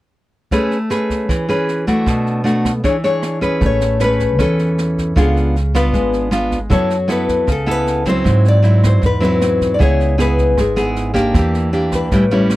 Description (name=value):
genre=bossa nova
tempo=155 BPM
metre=4/4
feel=straight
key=A major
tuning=A4 = 440 Hz
part: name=nylon-string guitar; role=accompaniment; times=0.5-12.6 s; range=G#2 to C#5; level=-16 LUFS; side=equal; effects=none
part: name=jazz brush drum kit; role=drums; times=0.5-12.6 s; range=kick drum, rim click, snare drum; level=-22 LUFS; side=right 1 dB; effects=none
part: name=upright bass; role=bass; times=3.6-12.6 s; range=G#1 to G#2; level=-17 LUFS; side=equal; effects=none
part: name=nylon-string guitar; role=melody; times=3.7-12.3 s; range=G4 to D5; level=-19 LUFS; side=left 3 dB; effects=none
room=little or no reverb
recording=dry, close 1970s-style studio recording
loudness=-13 LUFS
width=side -16 dB against mid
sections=0.5-3.6 A section; 3.6-12.6 B section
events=none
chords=0.5 Amaj9; 2.1 Bm7; 2.8 E6; 3.6 Amaj9; 5.2 C#7b9; 6.7 F#m7; 8.3 G#7alt; 9.8 C#m7; 11.3 Em7b5